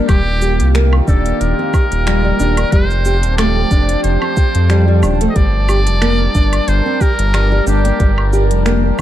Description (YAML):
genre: organic downtempo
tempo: 91 BPM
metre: 4/4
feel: swing 54% on 16ths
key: G minor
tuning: A4 = 442 Hz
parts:
  - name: warbly tape-like pad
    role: sustained chords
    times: 0.0-9.0 s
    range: Eb3 to A5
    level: -21 LUFS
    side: right 1 dB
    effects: chorus, built-in reverb, sidechain pumping
  - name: nylon-string guitar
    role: arpeggios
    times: 0.0-9.0 s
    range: G3 to G4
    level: -19 LUFS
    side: left 1 dB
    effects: tape echo
  - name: trumpet with metal mute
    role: melody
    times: 0.1-8.3 s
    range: G4 to Eb5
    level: -21 LUFS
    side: equal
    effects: ping-pong delay
  - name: round analog bass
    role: bass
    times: 0.1-9.0 s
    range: Eb1 to F2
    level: -14 LUFS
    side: equal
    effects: sidechain pumping
  - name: electronic kick drum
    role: drums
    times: 0.1-9.0 s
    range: none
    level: -13 LUFS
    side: equal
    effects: none
  - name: organic electronic drum kit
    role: drums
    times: 0.1-9.0 s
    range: finger snaps, hi-hat, shaker, woodblock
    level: -25 LUFS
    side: right 1 dB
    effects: none
room: digital ambience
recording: dark, warm production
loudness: -11 LUFS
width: side -12 dB against mid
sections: 0.0-9.0 A section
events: none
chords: 0.1 Eb6; 2.7 F7; 5.4 Gm7